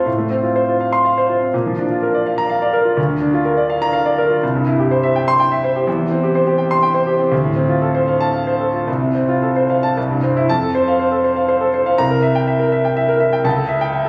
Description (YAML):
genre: classical, virtuoso piano study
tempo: 123 BPM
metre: 3/4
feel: rubato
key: F major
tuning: A4 = 440 Hz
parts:
  - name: clear concert grand piano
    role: solo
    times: 0.0-14.1 s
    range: C2 to C6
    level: -17 LUFS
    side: equal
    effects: none
room: moderate recital hall reverb, RT60 1.6 s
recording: recorded on a phone in the room, studio reverb, compression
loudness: -17 LUFS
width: mono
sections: 0.0-10.5 A section; 10.5-14.1 B section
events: none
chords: 0.1 F/A; 1.5 Bb; 3.0 Bb/D; 4.4 C; 5.9 C/E; 7.3 Dm7; 8.9 F/C; 10.0 C; 10.5 F; 12.0 C7; 13.5 A7/C#